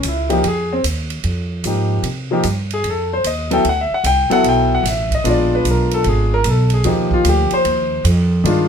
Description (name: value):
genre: jazz piano trio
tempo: 150 BPM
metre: 4/4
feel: swing 66% on 8ths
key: unclear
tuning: A4 = 442 Hz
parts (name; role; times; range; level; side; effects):
- clear concert grand piano; melody; 0.0-8.7 s; Eb3 to G5; -16 LUFS; left 2 dB; none
- upright bass; bass; 0.0-8.7 s; Ab1 to C3; -19 LUFS; right 1 dB; none
- swinging big-band drum kit; drums; 0.0-8.6 s; hi-hat, kick drum, ride cymbal, snare drum; -26 LUFS; right 4 dB; none
room: moderate studio reverb, RT60 0.6 s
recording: minimal, uncompressed stereo recording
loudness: -14 LUFS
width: side -7 dB against mid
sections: 0.0-8.7 A section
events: grand piano solo 0.0-8.7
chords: 0.4 Fm9; 2.0 C5; 2.8 F7; 3.6 Am13; 5.2 Bb7b9; 6.8 Ebmaj9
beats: 0.03 | 0.43 0.83 1.24 1.64 | 2.04 2.44 2.84 3.24 | 3.64 4.04 4.44 4.84 | 5.25 5.65 6.05 6.45 | 6.85 7.25 7.65 8.05 | 8.45